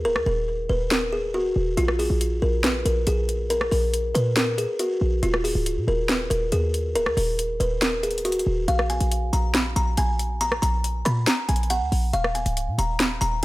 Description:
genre	hip hop, trap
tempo	139 BPM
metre	4/4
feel	half-time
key	Eb minor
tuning	A4 = 440 Hz
part	short 808-style bass	bass	0.0-13.4 s	Db1 to Bb2	-24 LUFS	equal	none
part	buzzing kalimba	melody	0.1-13.4 s	F4 to Cb6	-25 LUFS	equal	digital delay
part	trap drum kit	drums	0.2-13.4 s	hi-hat, rim click, snare drum	-25 LUFS	equal	none
room	light reverb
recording	none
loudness	-21 LUFS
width	side -18 dB against mid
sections	0.0-8.7 A section; 8.7-13.4 B section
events	break 0.0-1.8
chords	0.0 Ebm; 1.8 Absus2/Bb; 5.2 Eb5; 8.7 N.C.; 12.1 Eb7(no3)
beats	| 0.05 0.48 0.91 1.34 | 1.77 2.21 2.64 3.07 | 3.50 3.93 4.37 4.80 | 5.23 5.66 6.09 6.52 | 6.96 7.39 7.82 8.25 | 8.68 9.11 9.54 9.98 | 10.41 10.84 11.27 11.70 | 12.13 12.57 13.00 13.43

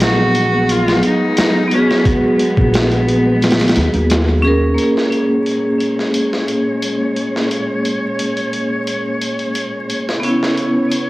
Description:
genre	trip hop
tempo	88 BPM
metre	4/4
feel	straight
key	Bb phrygian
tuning	A4 = 440 Hz
part	clear cello	melody	0.0-4.4 s	Cb4 to Gb4	-19 LUFS	equal	cassette tape, dub echo
part	vibraphone with hard mallets	accompaniment	0.0-11.1 s	Gb3 to Bb4	-16 LUFS	equal	harmonic tremolo, low-pass filter, cassette tape, tape echo
part	dark studio string section	sustained chords	0.0-11.1 s	Bb2 to Db5	-23 LUFS	equal	cassette tape
part	upright bass	bass	0.0-4.8 s	Bb1 to Eb2	-17 LUFS	equal	none
part	boom bap sampler-style drum kit	drums	0.0-11.1 s	hi-hat, kick drum, snare drum	-20 LUFS	equal	high-pass filter on hats, cassette tape, high-pass filter on kick, high-pass filter on snare, high-pass filter on room
room	light reverb, small room reverb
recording	home recording on cassette, vinyl crackle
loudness	-13 LUFS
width	side -18 dB against mid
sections	0.0-4.8 A section; 4.8-11.1 B section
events	filter sweep on vibraphone 4.8-11.1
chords	0.0 Abm7; 4.8 Bbm7; 10.2 Dbm7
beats	0.01 0.69 1.37 | 2.05 2.73 3.42 4.10 | 4.78 5.46 6.14 6.83 | 7.51 8.19 8.87 9.55 | 10.23 10.92

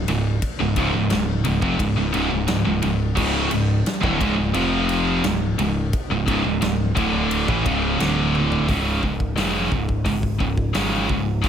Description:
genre	heavy metal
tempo	87 BPM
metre	4/4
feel	straight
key	unclear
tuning	A4 = 439 Hz
part	growling picked electric bass	bass	0.0-11.5 s	C#1 to A1	-26 LUFS	equal	overdrive
part	high-gain distorted guitar	riff	0.1-11.5 s	C#2 to F3	-25 LUFS	left 7 dB	distortion
part	scooped high-gain guitar	riff	0.1-11.5 s	C#2 to F3	-24 LUFS	right 8 dB	distortion
part	thick fuzz guitar	riff	0.1-8.7 s	C#2 to F3	-25 LUFS	left 1 dB	distortion
part	big rock drum kit	drums	0.1-11.5 s	crash cymbal, hi-hat, kick drum, ride cymbal, snare drum, toms	-26 LUFS	equal	none
room	small room ambience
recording	none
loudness	-18 LUFS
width	side -8 dB against mid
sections	0.0-8.7 A section; 8.7-11.5 B section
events	drum fill 8.3-8.7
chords	0.0 C#; 4.6 F5; 5.2 C#5; 8.0 D5; 8.7 C#5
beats	| 0.42 1.11 1.80 2.49 | 3.17 3.86 4.55 5.24 | 5.93 6.62 7.31 8.00 | 8.69 9.37 10.06 10.75 | 11.45

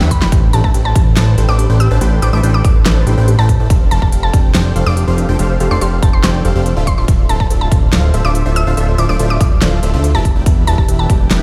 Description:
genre	future bass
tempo	142 BPM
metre	4/4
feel	half-time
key	A minor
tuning	A4 = 438 Hz
part	soft round pluck	arpeggios	0.0-11.4 s	G4 to G5	-30 LUFS	equal	chorus, sidechain pumping, dub echo
part	supersaw stab	riff	0.0-11.4 s	D4 to A5	-24 LUFS	equal	sidechain pumping
part	fat analog bass	bass	0.0-11.4 s	D1 to A2	-16 LUFS	equal	tube saturation, sidechain pumping
part	pop drum kit	drums	0.0-11.4 s	hi-hat, snare drum	-21 LUFS	equal	none
part	mallet-like synth pluck	melody	0.1-11.4 s	A5 to E6	-25 LUFS	equal	chorus, sidechain pumping, digital delay
part	electronic kick drum	drums	0.1-11.2 s	none	-15 LUFS	equal	none
room	little or no reverb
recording	played on a big sound system in a bare room, stone room reverb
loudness	-13 LUFS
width	mono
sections	0.0-11.4 A section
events	drum fill 0.0-0.3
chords	0.3 Am11; 3.7 F69; 6.9 Dm9; 10.3 Em7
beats	| 0.32 0.74 1.17 1.59 | 2.01 2.43 2.86 3.28 | 3.70 4.12 4.55 4.97 | 5.39 5.81 6.24 6.66 | 7.08 7.50 7.93 8.35 | 8.77 9.20 9.62 10.04 | 10.46 10.88 11.31

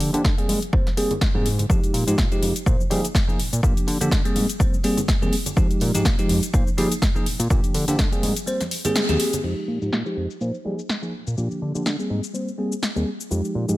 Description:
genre	filtered disco house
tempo	124 BPM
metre	4/4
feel	swing 56% on 16ths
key	unclear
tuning	A4 = 440 Hz
part	bell-like tine electric piano	accompaniment	0.0-13.8 s	F3 to C5	-25 LUFS	equal	phaser, sidechain pumping, low-pass filter
part	fat analog bass	bass	0.0-13.8 s	Eb2 to G3	-25 LUFS	equal	sidechain pumping, low-pass filter
part	house drum kit	drums	0.0-13.8 s	crash cymbal, hi-hat, shaker, snare drum	-27 LUFS	left 1 dB	sidechain pumping on hats, low-pass filter on hats, small room reverb, low-pass filter on snare, sidechain pumping on perc, low-pass filter on perc, sidechain pumping on cymbals, low-pass filter on cymbals
part	tambourine and congas	percussion	0.0-9.4, 13.3-13.8 s	none	-34 LUFS	right 2 dB	sidechain pumping on perc, low-pass filter on perc
part	electronic kick drum	drums	0.2-8.1 s	none	-21 LUFS	equal	small room reverb
room	digital ambience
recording	none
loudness	-20 LUFS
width	side -17 dB against mid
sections	0.0-9.4 A section; 9.4-13.8 B section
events	filter sweep 0.0-9.4, 9.4-13.8; kick drops out 8.5-9.4; band accent 9.0; filter sweep on drum 9.4-13.8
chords	0.5 Abmaj9; 1.7 Fm9; 2.7 Bb7sus4; 3.4 Gm7/Bb; 4.4 Abmaj9; 5.6 Fm9; 6.5 Bb7sus4; 7.3 Gm7/Bb; 8.2 Abmaj9; 9.4 Fm9; 10.4 Bb7sus4; 11.1 Gm7/Bb; 12.1 Abmaj9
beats	0.25 0.73 1.21 | 1.70 2.18 2.67 3.15 | 3.63 4.12 4.60 5.08 | 5.57 6.05 6.54 7.02 | 7.50 7.99 8.47 8.96 | 9.44 9.92 10.41 10.89 | 11.38 11.86 12.34 12.83 | 13.31

